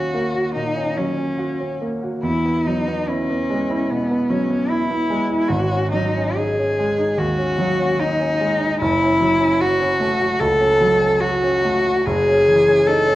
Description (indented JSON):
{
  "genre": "classical, impressionist duo for cello and grand piano",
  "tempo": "73 BPM",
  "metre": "4/4",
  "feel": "uneven beats, rubato",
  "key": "unclear",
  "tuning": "A4 = 437 Hz",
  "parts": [
    { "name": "rich cello", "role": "melody", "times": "0.0-13.2 s", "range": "B3 to A4", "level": "-18 LUFS", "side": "left 1 dB", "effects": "none" },
    { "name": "clear grand piano", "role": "accompaniment", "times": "0.0-13.2 s", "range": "F#1 to F#4", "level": "-21 LUFS", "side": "right 1 dB", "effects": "none" }
  ],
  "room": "wet recital hall reverb, RT60 1.5 s",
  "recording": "worn, warbling old tape, cassette tape, warbly pitch drift",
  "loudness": "-16 LUFS",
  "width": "side -15 dB against mid",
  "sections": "0.0-13.2 A section",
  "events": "none",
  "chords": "0.0 D#m7; 2.2 E69; 5.5 G#7sus4; 8.8 F#m7; 12.1 Amaj7#11/F#"
}